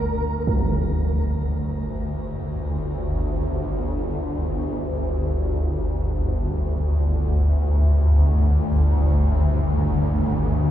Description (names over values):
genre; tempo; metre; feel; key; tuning
dark ambient drone; free time; none; none; G minor; A4 = 440 Hz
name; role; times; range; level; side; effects
swarming drone; drone; 0.0-10.7 s; G1 to D2; -20 LUFS; equal; built-in reverb, wide subtle chorus
flickering grainy texture; texture; 0.0-0.5 s; Bb4; -32 LUFS; right 2 dB; built-in reverb, analog chorus, shimmer reverb
impact; percussion; 0.5-0.7 s; none; -25 LUFS; right 1 dB; low-pass filter on sfx
room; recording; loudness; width
wet lush hall reverb, RT60 2.9 s; dreamy mix soaked in reverb; -20 LUFS; side -12 dB against mid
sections
0.5-10.7 A section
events
none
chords
0.5 G5